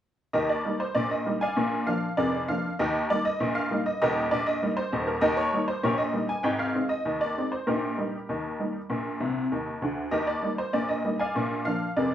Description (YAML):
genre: ragtime piano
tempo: 98 BPM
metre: 2/4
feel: straight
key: Eb major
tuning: A4 = 441 Hz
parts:
  - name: honky-tonk upright piano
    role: solo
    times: 0.3-12.1 s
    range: Eb1 to Ab5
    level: -25 LUFS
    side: equal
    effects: none
room: wet small room reverb, RT60 0.6 s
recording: heard from further back in the room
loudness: -25 LUFS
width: side -10 dB against mid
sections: 0.3-12.1 A section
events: honky-tonk piano fill 9.2-10.1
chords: 0.3 Eb; 1.6 Bb7; 2.8 Eb; 6.4 Ab; 7.7 Eb/Bb; 8.9 Bb; 10.1 Eb; 11.4 Bb7